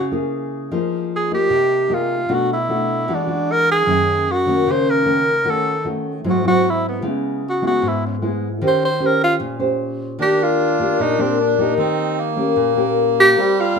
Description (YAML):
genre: bossa nova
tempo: 152 BPM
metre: 4/4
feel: straight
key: Eb major from 10.2 s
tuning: A4 = 440 Hz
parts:
  - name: breathy tenor saxophone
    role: melody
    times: 0.0-13.8 s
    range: Cb4 to C5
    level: -17 LUFS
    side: right 1 dB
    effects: none
  - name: nylon-string guitar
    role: accompaniment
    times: 0.0-13.8 s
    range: Gb2 to C5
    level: -19 LUFS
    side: left 2 dB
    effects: none
  - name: melodica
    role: second line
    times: 10.2-13.8 s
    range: G3 to D4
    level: -23 LUFS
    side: right 6 dB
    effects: none
room: light reverb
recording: minimal, uncompressed stereo recording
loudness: -16 LUFS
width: side -6 dB against mid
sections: 0.0-10.2 A section; 10.2-13.8 B section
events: tenor saxophone solo 0.0-10.2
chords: 0.0 Gb9 (rootless); 0.7 Fm11; 2.3 Bm7; 3.1 E9; 3.9 Gb6; 5.5 Ebm7b5; 6.2 Abaug7; 7.0 Dbm7; 8.6 Eb6; 10.2 Ebmaj7; 11.8 Eb7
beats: 0.31 | 0.71 1.10 1.50 1.90 | 2.29 2.69 3.08 3.48 | 3.87 4.27 4.66 5.06 | 5.45 5.85 6.24 6.64 | 7.03 7.43 7.83 8.22 | 8.62 9.01 9.41 9.80 | 10.20 10.59 10.99 11.39 | 11.78 12.18 12.57 12.97 | 13.37 13.76